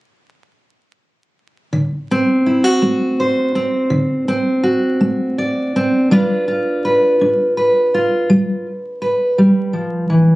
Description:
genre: acoustic country blues, solo or duo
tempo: 55 BPM (dotted quarters)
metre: 12/8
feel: straight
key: D mixolydian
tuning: A4 = 440 Hz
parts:
  - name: fingerpicked steel-string acoustic guitar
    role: solo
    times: 1.7-10.4 s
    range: D3 to D5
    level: -14 LUFS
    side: equal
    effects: none
room: moderate small room reverb, RT60 0.5 s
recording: recorded on a phone in the room, club reverb, vinyl crackle, compression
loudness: -14 LUFS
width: side -19 dB against mid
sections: 1.7-10.4 A section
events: none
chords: 1.7 D7; 6.1 G7

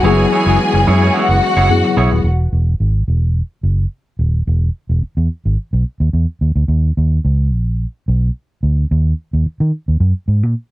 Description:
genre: disco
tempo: 108 BPM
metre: 4/4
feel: straight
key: B major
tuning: A4 = 440 Hz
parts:
  - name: clear studio string section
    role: second line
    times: 0.0-2.2 s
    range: F#4 to G#5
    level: -17 LUFS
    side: left 2 dB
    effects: none
  - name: mellow tine electric piano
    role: accompaniment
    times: 0.0-2.3 s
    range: F#3 to G#4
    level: -18 LUFS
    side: left 4 dB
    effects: medium stereo tremolo
  - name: semi-hollow electric guitar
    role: accompaniment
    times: 0.0-2.2 s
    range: B3 to C#5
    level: -20 LUFS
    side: right 4 dB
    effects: none
  - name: clear studio string section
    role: sustained chords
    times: 0.0-2.2 s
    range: E3 to F#4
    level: -21 LUFS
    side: equal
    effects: none
  - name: vintage muted fingered electric bass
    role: bass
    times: 0.0-10.5 s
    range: D#1 to D#3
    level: -14 LUFS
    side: equal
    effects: none
room: little or no reverb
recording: dry, close 1970s-style studio recording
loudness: -13 LUFS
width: side -16 dB against mid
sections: 0.0-2.3 A section; 2.3-10.7 B section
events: none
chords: 0.0 F#9sus4; 2.3 N.C.; 6.4 Bmaj7 (rootless)

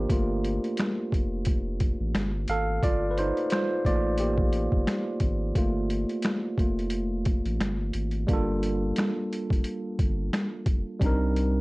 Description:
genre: lo-fi hip hop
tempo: 88 BPM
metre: 4/4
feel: swing 56% on 16ths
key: G minor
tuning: A4 = 444 Hz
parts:
  - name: tine electric piano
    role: accompaniment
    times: 0.0-11.6 s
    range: G3 to F5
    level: -28 LUFS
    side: right 1 dB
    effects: medium stereo tremolo, cassette tape
  - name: saturated sub bass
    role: bass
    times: 0.0-11.6 s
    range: F1 to C2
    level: -30 LUFS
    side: equal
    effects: transformer saturation
  - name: boom bap sampler-style drum kit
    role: drums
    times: 0.1-11.5 s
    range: finger snaps, hi-hat, kick drum, snare drum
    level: -27 LUFS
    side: equal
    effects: overdrive, vintage 12-bit sampler grit
room: light reverb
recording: worn, warbling old tape, cassette tape, warbly pitch drift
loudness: -24 LUFS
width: side -22 dB against mid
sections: 0.0-8.3 A section; 8.3-11.6 B section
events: tine electric piano solo 0.0-8.3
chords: 0.0 Gm9; 11.0 Cm9

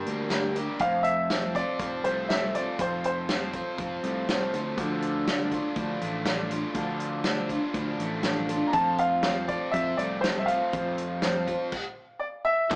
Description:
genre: folk rock and heartland rock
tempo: 121 BPM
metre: 4/4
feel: straight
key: F major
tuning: A4 = 440 Hz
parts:
  - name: bright baby grand piano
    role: melody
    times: 0.0-4.5, 8.7-12.8 s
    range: Bb4 to Bb5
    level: -27 LUFS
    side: equal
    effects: none
  - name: picked twelve-string acoustic guitar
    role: accompaniment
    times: 0.0-12.8 s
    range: G2 to Bb4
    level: -31 LUFS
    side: equal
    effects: none
  - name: overdriven electric guitar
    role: riff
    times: 0.0-12.8 s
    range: F2 to G4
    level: -33 LUFS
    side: equal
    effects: none
  - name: picked electric bass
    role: bass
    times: 0.1-12.8 s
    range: F1 to F2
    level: -34 LUFS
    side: equal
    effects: none
  - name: natural country drum kit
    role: drums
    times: 0.1-12.8 s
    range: crash cymbal, hi-hat, kick drum, snare drum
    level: -31 LUFS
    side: equal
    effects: none
  - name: pedal harmonium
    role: sustained chords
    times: 12.7-12.8 s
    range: F3 to D4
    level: -32 LUFS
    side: equal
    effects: none
  - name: tambourine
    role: percussion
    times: 12.7-12.8 s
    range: none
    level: -43 LUFS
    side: right 2 dB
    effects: none
room: moderate large studio reverb, RT60 1.2 s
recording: band playing live in one room, small speaker sound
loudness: -25 LUFS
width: side -27 dB against mid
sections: 0.0-12.7 A section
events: none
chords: 0.0 Gm; 0.8 F; 4.8 Dm; 8.7 F

